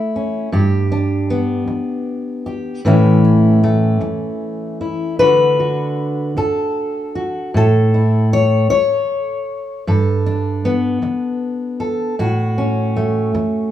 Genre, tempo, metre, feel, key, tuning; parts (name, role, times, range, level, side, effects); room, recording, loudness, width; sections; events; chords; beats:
folk, solo fingerstyle acoustic guitar; 51 BPM (dotted quarters); 6/8; straight; A4 = 440 Hz
fingerpicked steel-string acoustic guitar; solo; 0.0-13.7 s; G2 to C#5; -15 LUFS; equal
moderate large studio reverb, RT60 1.1 s; band playing live in one room, small room ambience; -15 LUFS; side -11 dB against mid
0.0-13.7 A section
0.0 A; 0.5 G; 2.8 A; 5.2 D; 7.5 A; 9.9 Gadd9; 12.2 A6
| 0.53 1.68 | 2.84 4.02 | 5.19 6.36 | 7.54 8.71 | 9.87 11.02 | 12.18 13.36